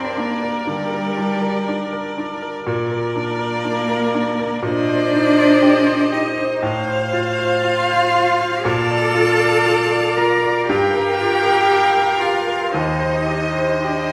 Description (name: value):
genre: classical, slow romantic movement for piano quintet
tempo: 60 BPM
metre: 4/4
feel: rubato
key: Bb major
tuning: A4 = 444 Hz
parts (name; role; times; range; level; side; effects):
- rich violin; melody; 0.0-14.1 s; G4 to Bb5; -26 LUFS; equal; none
- clear violin; second line; 0.0-14.1 s; D5 to F5; -28 LUFS; equal; none
- rich cello; second line; 0.0-14.1 s; G3 to Bb4; -22 LUFS; equal; none
- clear grand piano; accompaniment; 0.0-14.1 s; Eb2 to D5; -23 LUFS; equal; none
- rich viola; accompaniment; 0.0-14.1 s; Bb4 to D5; -29 LUFS; equal; none
room: wet recital hall reverb, RT60 1.6 s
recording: heard from further back in the room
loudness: -18 LUFS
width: mono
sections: 0.0-14.1 A section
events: none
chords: 0.0 Gm; 2.7 Bb; 4.6 Cm7/Bb; 6.6 F/A; 8.7 Bb; 10.7 Gm7; 12.7 Cm/Eb